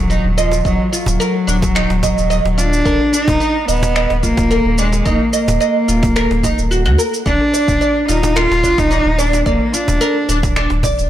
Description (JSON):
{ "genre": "organic downtempo", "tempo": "109 BPM", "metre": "4/4", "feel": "straight", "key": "Eb harmonic minor", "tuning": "A4 = 437 Hz", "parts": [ { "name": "warm cello", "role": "melody", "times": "0.0-10.6 s", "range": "F3 to F4", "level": "-17 LUFS", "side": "equal", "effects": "tape echo" }, { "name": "warm sub bass", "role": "bass", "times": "0.0-11.1 s", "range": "Eb1 to Eb2", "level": "-18 LUFS", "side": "equal", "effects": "tube saturation, sidechain pumping" }, { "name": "oud", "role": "arpeggios", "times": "0.1-11.1 s", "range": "D4 to Eb5", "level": "-19 LUFS", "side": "right 2 dB", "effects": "low-pass filter, tape echo" }, { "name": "electronic shaker and finger snaps", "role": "drums", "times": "0.1-11.1 s", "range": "none", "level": "-24 LUFS", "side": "equal", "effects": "soft clipping on snare" }, { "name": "cajon", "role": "percussion", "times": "0.5-11.0 s", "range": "none", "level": "-23 LUFS", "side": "right 1 dB", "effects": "none" }, { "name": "electronic kick drum", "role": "drums", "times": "0.7-11.0 s", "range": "none", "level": "-21 LUFS", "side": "equal", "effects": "overdrive" } ], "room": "light reverb, small room ambience", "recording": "blown-out, overdriven recording, overdrive", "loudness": "-12 LUFS", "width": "side -12 dB against mid", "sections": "0.0-11.1 A section", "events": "none", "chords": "0.0 Ebm; 7.3 Bb/Eb (rootless)" }